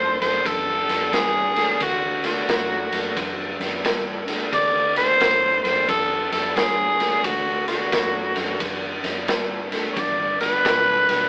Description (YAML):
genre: electric blues shuffle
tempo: 88 BPM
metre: 4/4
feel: swing 64% on 8ths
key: D mixolydian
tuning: A4 = 441 Hz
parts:
  - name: growling tenor saxophone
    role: melody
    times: 0.0-11.3 s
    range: F#4 to D5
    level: -23 LUFS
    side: equal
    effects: none
  - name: electric guitar through a small old amp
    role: riff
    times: 0.0-11.3 s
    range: G2 to B3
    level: -34 LUFS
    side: equal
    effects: none
  - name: vintage muted fingered electric bass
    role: bass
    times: 0.0-11.3 s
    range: G1 to G2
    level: -41 LUFS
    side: equal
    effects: none
  - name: raw garage drum kit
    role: drums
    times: 0.2-11.2 s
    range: kick drum, ride cymbal, snare drum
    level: -26 LUFS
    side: equal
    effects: none
room: moderate studio reverb, RT60 0.6 s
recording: rough rehearsal-room recording, warm saturation, AM radio sound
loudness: -22 LUFS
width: mono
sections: 0.0-11.3 A section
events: none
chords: 0.0 D; 10.0 G